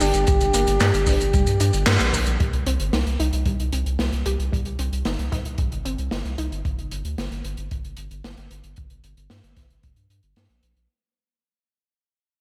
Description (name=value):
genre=synthwave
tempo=113 BPM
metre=4/4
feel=straight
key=unclear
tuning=A4 = 444 Hz
part: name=expressive synth lead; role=melody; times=0.0-2.1 s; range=G4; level=-26 LUFS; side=equal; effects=chorus, cassette tape, digital delay, slapback echo
part: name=string machine, full ensemble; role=sustained chords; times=0.0-2.4 s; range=G3 to G4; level=-38 LUFS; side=equal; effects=none
part: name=warbly dusty pluck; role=arpeggios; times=0.0-6.6 s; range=G3 to Bb4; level=-34 LUFS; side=equal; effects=chorus, delay, slapback echo
part: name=round analog bass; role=bass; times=0.0-10.9 s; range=F1 to G2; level=-27 LUFS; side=equal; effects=sidechain pumping
part: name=open jazz drum kit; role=drums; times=0.0-10.9 s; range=handclaps, hi-hat, shaker, snare drum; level=-29 LUFS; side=equal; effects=slapback echo
part: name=kick drum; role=drums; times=0.3-9.9 s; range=none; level=-26 LUFS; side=equal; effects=none
room=moderate lush hall reverb, RT60 2.0 s, studio reverb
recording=big arena sound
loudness=-23 LUFS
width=mono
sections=0.0-2.4 A section; 2.4-10.9 B section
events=band accent 1.9; fade-out 2.4-10.9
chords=0.0 Gm; 2.4 Cm; 6.6 N.C.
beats=| 0.28 0.81 1.34 1.87 | 2.40 2.93 3.46 3.99 | 4.52 5.05 5.58 6.12 | 6.65 7.18 7.71 8.24 | 8.77 9.30 9.83 10.36